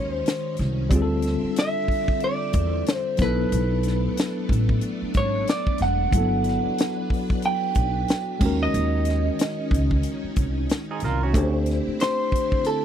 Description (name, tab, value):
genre	R&B, neo-soul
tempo	92 BPM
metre	4/4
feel	swing 59% on 16ths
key	unclear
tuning	A4 = 440 Hz
part	electric guitar through a small old amp	melody	0.0-12.8 s	A4 to G5	-27 LUFS	right 2 dB	tape echo
part	tine electric piano	accompaniment	0.0-12.8 s	D#3 to C5	-28 LUFS	left 2 dB	overdrive, fast stereo tremolo
part	string machine, violins	sustained chords	0.0-12.8 s	D3 to E5	-32 LUFS	equal	ensemble chorus
part	upright bass	bass	0.0-11.9 s	E1 to E2	-24 LUFS	equal	none
part	tight funk drum kit	drums	0.3-12.8 s	crash cymbal, hi-hat, kick drum, snare drum	-24 LUFS	equal	none
part	electric guitar through a small old amp	second line	10.9-11.5 s	C#4 to A#4	-28 LUFS	right 7 dB	none
room	little or no reverb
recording	dry, close 1970s-style studio recording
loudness	-21 LUFS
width	side -9 dB against mid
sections	0.0-12.8 A section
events	none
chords	0.0 D#m7; 0.9 Dm9; 3.2 Bm7; 6.1 Gmaj7; 8.4 D#m7; 11.3 D7sus2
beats	0.26 | 0.91 1.56 2.21 2.87 | 3.52 4.17 4.82 5.47 | 6.13 6.78 7.43 8.08 | 8.73 9.39 10.04 10.69 | 11.34 12.00 12.65